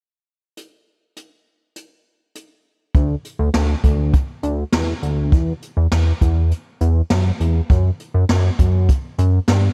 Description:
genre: synth-pop.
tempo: 101 BPM.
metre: 4/4.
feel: straight.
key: unclear.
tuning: A4 = 439 Hz.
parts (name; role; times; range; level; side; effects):
jazz brush drum kit; drums; 0.6-9.6 s; hi-hat, kick drum, snare drum; -20 LUFS; equal; none.
chorused synth bass; bass; 2.9-9.7 s; D2 to G2; -19 LUFS; equal; none.
room: little or no reverb.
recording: none.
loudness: -18 LUFS.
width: mono.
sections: 0.6-2.9 A section; 2.9-9.7 B section.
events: none.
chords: none.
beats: | 0.57 1.16 1.76 2.35 | 2.95 3.54 4.13 4.73 | 5.32 5.92 6.51 7.10 | 7.70 8.29 8.89 9.48.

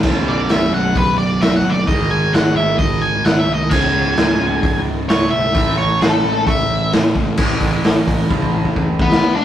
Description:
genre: quiet-loud alternative rock.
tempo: 131 BPM.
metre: 4/4.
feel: straight.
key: unclear.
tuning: A4 = 440 Hz.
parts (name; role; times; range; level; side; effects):
overdriven semi-hollow guitar; riff; 0.0-9.2 s; B1 to A3; -21 LUFS; right 3 dB; spring reverb.
sludgy distorted guitar; riff; 0.0-9.4 s; B1 to E4; -25 LUFS; left 4 dB; overdrive.
overdriven picked electric bass; bass; 0.0-9.1 s; B0 to A1; -26 LUFS; equal; none.
raw garage drum kit; drums; 0.0-9.2 s; crash cymbal, hi-hat, kick drum, snare drum; -17 LUFS; equal; none.
octave-fuzz lead guitar; melody; 0.3-9.4 s; B3 to G#5; -18 LUFS; left 1 dB; distortion.
room: moderate studio reverb, RT60 0.6 s.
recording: rough rehearsal-room recording.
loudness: -14 LUFS.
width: side -11 dB against mid.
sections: 0.0-7.4 A section; 7.4-9.2 B section.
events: lead electric guitar solo 0.0-7.4; drum fill 8.3-9.2.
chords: 0.0 B5; 1.9 G#5; 3.7 C#5; 5.6 A5.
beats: | 0.04 0.50 0.96 1.42 | 1.88 2.34 2.80 3.25 | 3.71 4.17 4.63 5.09 | 5.55 6.01 6.47 6.93 | 7.39 7.85 8.31 8.77 | 9.22.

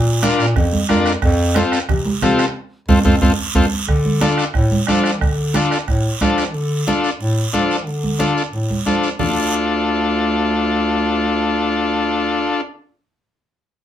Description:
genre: latin, cumbia.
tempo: 181 BPM.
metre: 4/4.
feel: straight.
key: D minor.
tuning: A4 = 440 Hz.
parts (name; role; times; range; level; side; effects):
mellow bass clarinet; bass; 0.0-12.6 s; D2 to F3; -20 LUFS; equal; none.
overdriven combo organ; accompaniment; 0.2-12.6 s; C4 to Bb4; -18 LUFS; left 3 dB; none.
bombo; percussion; 0.2-6.5 s; none; -20 LUFS; right 2 dB; none.
congas; percussion; 0.2-9.3 s; none; -21 LUFS; right 3 dB; none.
guiro; percussion; 0.2-9.3 s; none; -28 LUFS; right 6 dB; none.
room: wet small room ambience, RT60 0.5 s.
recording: band playing live in one room.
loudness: -15 LUFS.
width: side -11 dB against mid.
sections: 0.0-3.9 A section; 3.9-9.2 B section; 9.2-11.9 C section.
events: band accent 2.6-3.9; drum fill 3.4-3.9.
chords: 0.0 Bb; 1.2 F; 3.9 Dm.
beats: 0.23 0.56 0.89 | 1.23 1.56 1.89 2.22 | 2.55 2.89 3.22 3.55 | 3.88 4.21 4.54 4.88 | 5.21 5.54 5.87 6.20 | 6.54 6.87 7.20 7.53 | 7.86 8.20 8.53 8.86 | 9.19 9.53 9.86 10.19 | 10.52 10.85 11.19 11.52.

